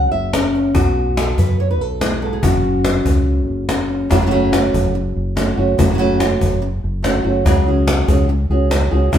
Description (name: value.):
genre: flamenco.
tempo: 143 BPM.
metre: 4/4.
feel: straight.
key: F# minor.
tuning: A4 = 439 Hz.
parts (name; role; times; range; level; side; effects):
flamenco guitar; melody; 0.0-9.2 s; F#2 to F#5; -18 LUFS; equal; none.
fingered electric bass; bass; 0.0-9.2 s; F#1 to F#2; -19 LUFS; equal; none.
cajon; percussion; 0.3-9.2 s; none; -20 LUFS; left 1 dB; none.
room: moderate stone room reverb, RT60 1.0 s.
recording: band playing live in one room.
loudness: -14 LUFS.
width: side -9 dB against mid.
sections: 0.0-4.1 A section; 4.1-9.2 B section.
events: none.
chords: 0.0 F#5; 0.8 B5; 2.4 F#5; 4.1 F#m; 7.5 C#sus4.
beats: 0.33 | 0.75 1.17 1.59 2.01 | 2.43 2.85 3.27 3.69 | 4.11 4.53 4.95 5.37 | 5.79 6.20 6.62 7.04 | 7.46 7.88 8.29 8.71 | 9.13.